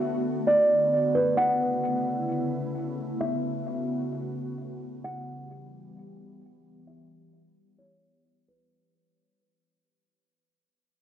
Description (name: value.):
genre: hip hop, atmospheric cloud-rap.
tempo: 131 BPM.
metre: 4/4.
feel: half-time.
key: unclear.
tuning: A4 = 443 Hz.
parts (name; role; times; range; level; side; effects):
ethereal airy pad; sustained chords; 0.0-8.7 s; C#3 to G4; -31 LUFS; equal; ensemble chorus, built-in reverb, low-pass filter.
buzzing kalimba; melody; 0.5-8.7 s; B4 to F#5; -25 LUFS; right 1 dB; low-pass filter, cassette tape, tape echo.
room: wet studio reverb, RT60 0.5 s.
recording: home recording on cassette.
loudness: -24 LUFS.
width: side -10 dB against mid.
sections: 0.0-8.7 A section.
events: fade-out 0.0-8.7; filter sweep 0.0-8.7.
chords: 0.0 Bm7; 1.4 Aadd9; 5.0 Em.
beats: 0.01 0.46 0.92 | 1.38 1.84 2.30 2.75 | 3.21 3.67 4.13 4.59 | 5.04 5.50 5.96 6.42 | 6.88 7.33 7.79 8.25.